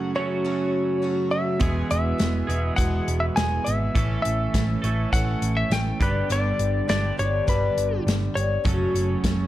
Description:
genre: folk rock and heartland rock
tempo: 102 BPM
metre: 4/4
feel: straight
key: A major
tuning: A4 = 440 Hz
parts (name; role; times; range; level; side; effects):
- clean lap steel guitar; melody; 0.0-9.5 s; B4 to G#5; -28 LUFS; equal; none
- picked twelve-string acoustic guitar; accompaniment; 0.0-9.5 s; E2 to A4; -29 LUFS; left 4 dB; none
- twelve-string electric guitar; riff; 0.0-9.5 s; E2 to A4; -28 LUFS; right 4 dB; spring reverb
- hollow-body short-scale picked electric bass; bass; 1.6-9.4 s; E1 to A1; -25 LUFS; equal; none
- natural country drum kit; drums; 1.6-9.4 s; hi-hat, kick drum, snare drum; -26 LUFS; equal; none
room: light reverb, studio reverb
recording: dark, warm production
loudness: -21 LUFS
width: side -14 dB against mid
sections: 0.0-9.5 A section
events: none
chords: 0.0 F#m; 1.6 E; 4.0 A; 6.0 G; 8.6 F#m

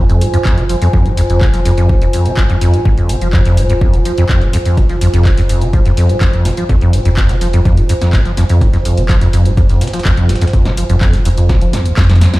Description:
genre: acid house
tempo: 125 BPM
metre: 4/4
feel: straight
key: F minor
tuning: A4 = 440 Hz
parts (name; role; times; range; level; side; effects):
- acid bass, saw; riff; 0.0-12.4 s; Eb2 to F3; -13 LUFS; equal; analog chorus, cassette tape
- saturated sub bass; bass; 0.0-12.3 s; Eb1 to F2; -17 LUFS; equal; sidechain pumping
- warbly tape-like pad; texture; 0.0-12.4 s; F4 to Ab5; -21 LUFS; equal; chorus, built-in reverb, sidechain pumping
- punchy analog drum machine; drums; 0.1-12.4 s; handclaps, hi-hat, snare drum; -23 LUFS; equal; none
- electronic kick drum; drums; 0.5-12.1 s; none; -13 LUFS; equal; none
- breakbeat sampler-style drum kit; drums; 4.8-12.3 s; hi-hat, snare drum; -34 LUFS; equal; none
room: light reverb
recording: played on a big sound system in a bare room, stone room reverb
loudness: -10 LUFS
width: side -19 dB against mid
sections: 0.0-12.4 A section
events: filter sweep on acid bass 0.0-12.4; drum fill 11.7-12.4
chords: 0.0 Fm

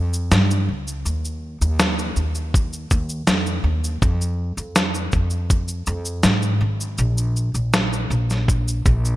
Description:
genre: acoustic pop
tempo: 81 BPM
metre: 4/4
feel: straight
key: unclear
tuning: A4 = 440 Hz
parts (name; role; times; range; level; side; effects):
- upright bass; bass; 0.0-9.2 s; Ab1 to Ab2; -21 LUFS; equal; none
- dusty soul sampler-style drum kit; drums; 0.1-9.2 s; kick drum, shaker, snare drum; -20 LUFS; equal; gated reverb
room: light reverb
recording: bright 1980s-style digital production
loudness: -19 LUFS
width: side -16 dB against mid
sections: 0.0-9.2 A section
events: none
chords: none

